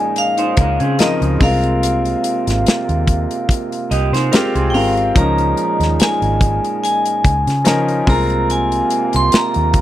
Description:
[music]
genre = lush 1970s-style soul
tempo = 72 BPM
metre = 4/4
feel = swing 54% on 16ths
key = Ab major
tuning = A4 = 440 Hz
[part]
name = vibraphone with hard mallets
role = melody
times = 0.0-9.8 s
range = Eb5 to C6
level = -19 LUFS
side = left 2 dB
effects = none
[part]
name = clear baby grand piano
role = accompaniment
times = 0.0-9.8 s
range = Db3 to Bb4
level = -21 LUFS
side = left 1 dB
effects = none
[part]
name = warm trombone section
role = stabs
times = 0.0-9.8 s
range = Bb2 to F4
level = -23 LUFS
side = right 7 dB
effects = none
[part]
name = modern studio drum kit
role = drums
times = 0.2-9.8 s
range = hi-hat, kick drum, snare drum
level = -16 LUFS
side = equal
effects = none
[part]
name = electric guitar through a small old amp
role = riff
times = 0.4-5.1 s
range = C4 to Eb5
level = -21 LUFS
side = right 4 dB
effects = wide subtle chorus
[part]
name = vintage muted fingered electric bass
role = bass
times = 0.6-9.8 s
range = Ab1 to Db3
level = -18 LUFS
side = equal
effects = none
[sound]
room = studio reverb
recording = dry, close 1970s-style studio recording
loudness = -13 LUFS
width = side -13 dB against mid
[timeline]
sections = 0.0-9.8 A section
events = none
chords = 0.0 Db69; 1.4 Ab69; 5.2 Db69; 8.1 Ab69/C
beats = 0.16 0.99 | 1.83 2.66 3.49 4.33 | 5.16 5.99 6.83 7.66 | 8.49 9.33

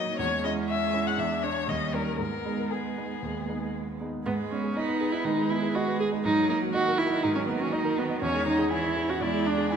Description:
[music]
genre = quick classical-period movement for piano quartet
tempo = 121 BPM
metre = 4/4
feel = straight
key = G# minor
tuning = A4 = 441 Hz
[part]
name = dark violin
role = melody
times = 0.0-9.8 s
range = G#4 to F#5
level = -33 LUFS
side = left 7 dB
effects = none
[part]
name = rich cello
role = second line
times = 0.0-9.8 s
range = D#3 to B3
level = -32 LUFS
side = right 7 dB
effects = none
[part]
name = clear concert grand piano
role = accompaniment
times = 0.0-9.8 s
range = D#2 to G#5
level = -31 LUFS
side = right 1 dB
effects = none
[part]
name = warm viola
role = accompaniment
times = 0.0-9.8 s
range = B3 to G#4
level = -29 LUFS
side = right 1 dB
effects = none
[sound]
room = wet recital hall reverb, RT60 1.6 s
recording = none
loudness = -25 LUFS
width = side -7 dB against mid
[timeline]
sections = 0.0-4.3 A section; 4.3-9.8 B section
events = none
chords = 0.2 C#m/E; 1.2 E7; 1.7 D#7; 2.2 G#m; 6.2 D#m/G#; 8.2 C#m/E; 9.2 E7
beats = | 0.20 0.69 1.18 1.68 | 2.19 2.71 3.22 3.74 | 4.25 4.75 5.25 5.75 | 6.24 6.74 7.24 7.74 | 8.23 8.72 9.21 9.71

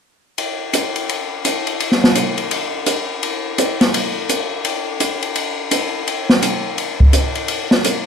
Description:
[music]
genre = jazz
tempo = 169 BPM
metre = 4/4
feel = swing 63% on 8ths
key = none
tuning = none
[part]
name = open jazz drum kit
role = drums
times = 0.4-8.0 s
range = hi-hat, kick drum, ride cymbal, snare drum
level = -16 LUFS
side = left 1 dB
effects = none
[sound]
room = light reverb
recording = dark, warm production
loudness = -16 LUFS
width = side -7 dB against mid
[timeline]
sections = 0.4-8.1 A section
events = none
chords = none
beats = | 0.38 0.73 1.09 1.44 | 1.80 2.15 2.51 2.87 | 3.22 3.58 3.93 4.29 | 4.65 5.00 5.36 5.71 | 6.07 6.43 6.78 7.14 | 7.49 7.85

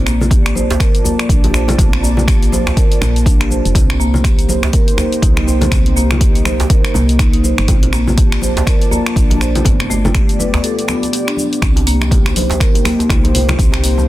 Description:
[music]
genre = afro house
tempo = 122 BPM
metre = 4/4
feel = swing 59% on 16ths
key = C dorian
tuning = A4 = 440 Hz
[part]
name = dark analog pad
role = sustained chords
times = 0.0-14.1 s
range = Bb3 to A5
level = -24 LUFS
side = equal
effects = chorus, vintage 12-bit sampler grit, sidechain pumping
[part]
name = woody FM bass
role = bass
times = 0.0-14.1 s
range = F1 to C2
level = -17 LUFS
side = equal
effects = sidechain pumping
[part]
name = marimba with soft mallets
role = arpeggios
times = 0.1-14.0 s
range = A3 to C5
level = -19 LUFS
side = equal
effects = sidechain pumping, digital delay
[part]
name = deep house drum kit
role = drums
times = 0.1-14.1 s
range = finger snaps, hi-hat, shaker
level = -21 LUFS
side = equal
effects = soft clipping on snare
[part]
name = djembe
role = percussion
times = 0.1-14.1 s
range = none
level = -23 LUFS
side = right 1 dB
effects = none
[part]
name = congas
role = percussion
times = 0.2-14.1 s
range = none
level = -23 LUFS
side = left 2 dB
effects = none
[part]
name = electronic kick drum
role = drums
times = 0.3-13.7 s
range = none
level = -14 LUFS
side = equal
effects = none
[sound]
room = little or no reverb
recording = dense, heavily limited modern master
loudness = -11 LUFS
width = side -16 dB against mid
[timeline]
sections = 0.0-11.6 A section; 11.6-14.1 B section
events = break 10.6-11.6; drop 11.6-14.1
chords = 0.0 Bbmaj7; 3.8 Cm7; 7.7 Bbmaj7; 9.7 G7; 11.6 Cm7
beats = 0.31 0.80 1.29 | 1.78 2.28 2.77 3.26 | 3.75 4.24 4.74 5.23 | 5.72 6.21 6.70 7.20 | 7.69 8.18 8.67 9.16 | 9.65 10.15 10.64 11.13 | 11.62 12.11 12.61 13.10 | 13.59 14.08

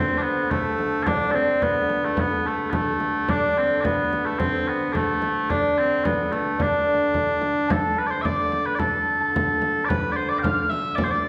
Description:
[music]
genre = medieval dance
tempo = 109 BPM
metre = 2/4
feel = straight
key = D dorian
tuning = A4 = 438 Hz
[part]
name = mellow small bagpipes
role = melody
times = 0.0-11.3 s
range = A3 to G5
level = -26 LUFS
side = equal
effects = none
[part]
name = concert harp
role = second line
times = 0.0-11.3 s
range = A4 to F6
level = -29 LUFS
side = equal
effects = none
[part]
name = dark hurdy-gurdy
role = drone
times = 0.0-11.3 s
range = D3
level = -33 LUFS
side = equal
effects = none
[part]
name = frame drum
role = percussion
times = 0.5-11.2 s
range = none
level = -30 LUFS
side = equal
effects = none
[sound]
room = wet recital hall reverb, RT60 1.5 s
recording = recorded in a church or concert hall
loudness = -23 LUFS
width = mono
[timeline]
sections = 0.0-7.7 A section; 7.7-11.3 B section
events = none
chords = none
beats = 0.51 | 1.06 1.62 | 2.17 2.73 | 3.28 3.84 | 4.39 4.94 | 5.49 6.04 | 6.59 7.14 | 7.69 8.24 | 8.79 9.33 | 9.88 10.42 | 10.97

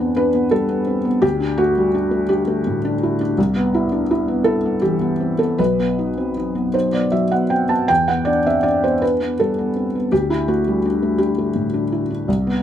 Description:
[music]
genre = neoclassical minimalist piano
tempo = 51-56 BPM (dotted quarters)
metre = 6/8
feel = rubato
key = unclear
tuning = A4 = 440 Hz
[part]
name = felt-muted upright piano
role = solo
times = 0.0-12.6 s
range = B1 to A5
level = -16 LUFS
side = equal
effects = none
[sound]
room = light reverb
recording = close, detailed microphones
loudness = -16 LUFS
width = side -10 dB against mid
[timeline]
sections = 0.0-12.6 A section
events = none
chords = 0.0 Em7; 1.2 Dsus4; 3.4 Cmaj7; 5.6 B; 7.9 Em7; 10.1 Dsus4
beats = 0.15 | 1.23 2.30 | 3.37 4.45 | 5.58 6.74 | 7.90 9.02 | 10.12 11.19 | 12.28

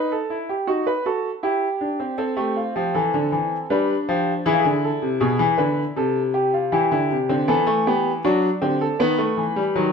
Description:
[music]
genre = classical, baroque-style 3-part fugue for grand piano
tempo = 79 BPM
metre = 3/4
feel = straight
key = unclear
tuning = A4 = 439 Hz
[part]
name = clear concert grand piano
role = solo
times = 0.0-9.9 s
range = B2 to B4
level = -19 LUFS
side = left 1 dB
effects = none
[sound]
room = wet stone room reverb, RT60 1.3 s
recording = minimal, uncompressed stereo recording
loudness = -19 LUFS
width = side -6 dB against mid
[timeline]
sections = 0.0-9.9 A section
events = none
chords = 0.0 B7/D#; 1.4 Em; 2.2 Am; 3.7 G; 4.4 E7; 6.0 Am/C; 6.7 Em; 8.2 D/F#; 9.0 B7/D#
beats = 0.68 1.43 | 2.18 2.93 3.69 | 4.45 5.20 5.96 | 6.72 7.48 8.24 | 9.00 9.76

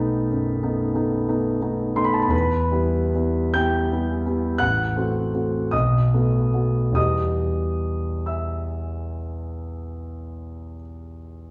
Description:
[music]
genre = classical, romantic nocturne for solo piano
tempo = 45-61 BPM (dotted quarters)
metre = 12/8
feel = rubato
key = E minor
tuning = A4 = 439 Hz
[part]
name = warm concert grand piano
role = solo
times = 0.0-11.5 s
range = A1 to G6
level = -23 LUFS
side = equal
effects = none
[sound]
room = wet recital hall reverb, RT60 1.7 s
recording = heard from further back in the room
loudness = -23 LUFS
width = mono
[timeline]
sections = 0.0-11.5 A section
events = none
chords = 0.0 B7; 2.3 Em; 4.6 F#dim/A; 5.7 B7; 7.0 Em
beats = 0.29 1.28 | 2.33 3.56 4.61 5.73 | 6.96 8.28 9.53 10.80

